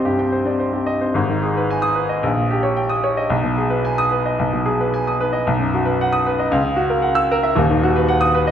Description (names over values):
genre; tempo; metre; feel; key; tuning
classical, virtuoso piano study; 112 BPM; 4/4; rubato; G# minor; A4 = 439 Hz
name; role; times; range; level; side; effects
clear grand piano; solo; 0.0-8.5 s; D#1 to E6; -16 LUFS; equal; none
room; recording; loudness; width
wet recital hall reverb, RT60 1.7 s; none; -16 LUFS; side -9 dB against mid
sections
0.0-1.2 A section; 1.2-8.5 B section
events
none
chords
0.0 Cm; 1.2 G#m; 2.2 D#7/A#; 3.3 G#m/B; 5.5 B; 6.5 F#7/C#; 7.6 B/D#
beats
0.04 0.60 | 1.16 1.70 2.24 2.78 | 3.32 3.85 4.39 4.92 | 5.45 5.99 6.51 7.04 | 7.57 8.09